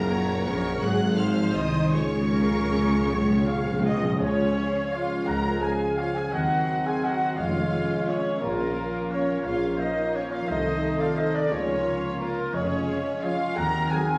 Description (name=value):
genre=classical, orchestral ballroom waltz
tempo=150-188 BPM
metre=3/4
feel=rubato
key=Db major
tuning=A4 = 444 Hz
part: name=warm symphonic violin section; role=melody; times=0.0-14.2 s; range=Bb4 to Gb6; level=-41 LUFS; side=equal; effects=none
part: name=rich symphonic violin section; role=second line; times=0.0-14.2 s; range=Bb4 to Bb5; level=-40 LUFS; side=equal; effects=none
part: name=rich symphonic viola section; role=accompaniment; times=0.0-14.2 s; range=Bb3 to F5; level=-36 LUFS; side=equal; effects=none
part: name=concert harp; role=arpeggios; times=0.0-14.2 s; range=Gb2 to Db6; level=-36 LUFS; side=equal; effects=none
part: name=clear tuba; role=bass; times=0.0-13.8 s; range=F1 to Eb2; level=-32 LUFS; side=equal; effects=none
part: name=warm studio double bass section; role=bass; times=0.0-13.8 s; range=F1 to Eb2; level=-35 LUFS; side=equal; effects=none
part: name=warm symphonic cello section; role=bass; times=0.0-13.8 s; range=Db2 to Gb3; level=-35 LUFS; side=equal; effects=none
part: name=timpani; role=percussion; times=1.9-4.7 s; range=Db3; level=-30 LUFS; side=equal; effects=none
part: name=mellow clarinet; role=second line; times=4.2-14.2 s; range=C4 to F4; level=-39 LUFS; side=equal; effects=none
part: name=mellow concert flute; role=second line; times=4.2-14.2 s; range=Bb4 to Bb5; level=-33 LUFS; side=equal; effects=none
part: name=warm oboe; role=second line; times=4.2-14.2 s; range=F4 to Gb5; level=-40 LUFS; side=equal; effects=none
part: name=warm bassoon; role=accompaniment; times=4.2-14.2 s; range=F3 to Bb3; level=-38 LUFS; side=equal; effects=none
part: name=dark French horn section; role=sustained chords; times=4.2-14.0 s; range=Ab3 to A4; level=-37 LUFS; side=equal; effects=none
part: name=warm trombone section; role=sustained chords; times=4.2-14.0 s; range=Db3 to Bb3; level=-36 LUFS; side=equal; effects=none
part: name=dark trumpet section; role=stabs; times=4.2-14.2 s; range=Bb4 to Bb5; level=-36 LUFS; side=equal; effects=none
room=wet stone room reverb, RT60 1.1 s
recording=heard from further back in the room, small room ambience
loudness=-25 LUFS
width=mono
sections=0.0-4.2 A section; 4.2-14.2 A section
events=timpani fill 1.9-4.2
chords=0.0 Gb; 0.8 Ab7; 1.9 Db; 6.3 Cdim/Eb; 7.4 Db/F; 8.4 Bbm; 10.5 Adim/C; 11.5 Bbm/Db; 12.5 Db/F; 13.6 Cdim/Eb